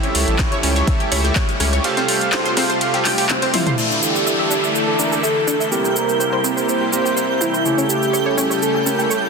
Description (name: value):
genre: progressive house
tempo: 124 BPM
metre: 4/4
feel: straight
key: D minor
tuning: A4 = 440 Hz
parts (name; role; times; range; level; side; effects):
- filtered supersaw swell; sustained chords; 0.0-9.3 s; C3 to A4; -24 LUFS; equal; sidechain pumping
- analog pluck; arpeggios; 0.0-9.2 s; C4 to E5; -24 LUFS; left 1 dB; analog chorus, sidechain pumping, ping-pong delay
- chorused polysynth; stabs; 0.0-9.1 s; C#3 to F5; -22 LUFS; right 4 dB; sidechain pumping, ping-pong delay
- deep house drum kit; drums; 0.0-9.2 s; cabasa, crash cymbal, handclaps, hi-hat, rim click, toms; -22 LUFS; equal; overdrive
- saturated sub bass; bass; 0.1-1.8 s; A1 to C#2; -20 LUFS; equal; sidechain pumping
- breakbeat sampler-style drum kit; drums; 0.1-3.7 s; ride cymbal, snare drum; -30 LUFS; right 4 dB; sidechain pumping on cymbals, high-pass filter on cymbals, high-pass filter on snare
- electronic kick drum; drums; 0.4-1.5 s; none; -20 LUFS; equal; overdrive
- warm velvety synth lead; melody; 3.5-9.3 s; E4 to C5; -21 LUFS; equal; chorus, sidechain pumping, ping-pong delay
- downlifter; sound effects; 3.8-7.7 s; none; -25 LUFS; equal; none
- twinkling granular texture; texture; 4.1-9.3 s; G6; -28 LUFS; right 3 dB; built-in reverb, sidechain pumping
room: moderate huge ambient reverb, RT60 4.8 s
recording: dense, heavily limited modern master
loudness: -15 LUFS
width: side -4 dB against mid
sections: 0.0-3.8 A section; 3.8-9.3 B section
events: drum fill 3.5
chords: 0.0 A7; 1.8 Fadd9; 3.8 Dsus2; 5.7 C7; 7.7 A7/C#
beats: 0.39 0.88 1.36 | 1.84 2.33 2.81 3.29 | 3.78 4.26 4.75 5.23 | 5.71 6.20 6.68 7.17 | 7.65 8.13 8.62 9.10